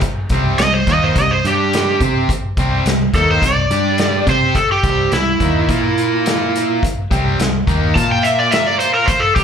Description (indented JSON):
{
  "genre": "blues rock power trio and southern rock",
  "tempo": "106 BPM",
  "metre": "4/4",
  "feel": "straight",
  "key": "unclear",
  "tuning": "A4 = 440 Hz",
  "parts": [
    { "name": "vintage drum kit", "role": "drums", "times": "0.0-9.4 s", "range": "hi-hat, kick drum, snare drum", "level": "-19 LUFS", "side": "equal", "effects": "none" },
    { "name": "overdriven electric guitar", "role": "riff", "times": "0.3-9.4 s", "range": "C3 to C5", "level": "-19 LUFS", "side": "left 1 dB", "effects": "slapback echo" },
    { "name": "fingered electric bass", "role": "bass", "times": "0.3-9.4 s", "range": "C2 to C3", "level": "-20 LUFS", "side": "equal", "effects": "none" },
    { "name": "overdriven slide guitar", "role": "melody", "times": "0.6-9.4 s", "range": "E4 to A5", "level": "-16 LUFS", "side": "right 2 dB", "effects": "slapback echo" }
  ],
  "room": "light reverb, small room ambience",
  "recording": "live gig heard through the venue's PA, club reverb",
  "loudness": "-13 LUFS",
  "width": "side -7 dB against mid",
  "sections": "0.0-9.4 A section",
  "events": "none",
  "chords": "0.0 C5; 1.4 G5; 2.0 C5; 3.7 G5; 4.3 C; 5.7 Bb5; 7.1 C5; 8.0 Bb5",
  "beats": "| 0.02 0.59 1.16 1.72 | 2.29 2.86 3.43 3.99 | 4.56 5.12 5.69 6.26 | 6.82 7.39 7.95 8.52 | 9.08"
}